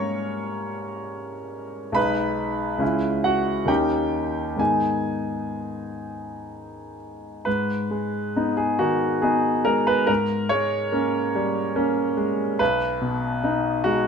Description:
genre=classical, romantic character piece for solo piano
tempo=62-72 BPM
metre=3/4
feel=rubato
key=G# minor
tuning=A4 = 440 Hz
part: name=bright grand piano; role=solo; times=0.0-14.1 s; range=B1 to C#6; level=-22 LUFS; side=equal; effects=none
room=moderate large studio reverb, RT60 1.0 s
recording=minimal, uncompressed stereo recording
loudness=-21 LUFS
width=side -6 dB against mid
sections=0.0-7.5 A section; 7.5-14.1 A section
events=none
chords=0.0 Gdim/G#; 2.0 G#m/B; 2.8 C#m; 3.7 D#7; 4.6 G#m; 10.1 Gdim/G#; 12.6 G#m/B

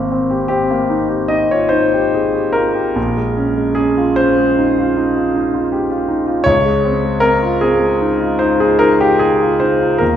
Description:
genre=classical, impressionist solo piano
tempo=47-54 BPM (dotted quarters)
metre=9/8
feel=rubato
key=unclear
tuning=A4 = 440 Hz
part: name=clear concert grand piano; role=solo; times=0.0-10.2 s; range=Ab1 to Eb5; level=-12 LUFS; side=equal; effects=none
room=wet recital hall reverb, RT60 1.4 s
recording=recorded in a church or concert hall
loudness=-13 LUFS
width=side -10 dB against mid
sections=0.0-10.2 A section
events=none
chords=0.0 Abmaj9; 3.0 Bbm11; 6.5 Dbmaj9

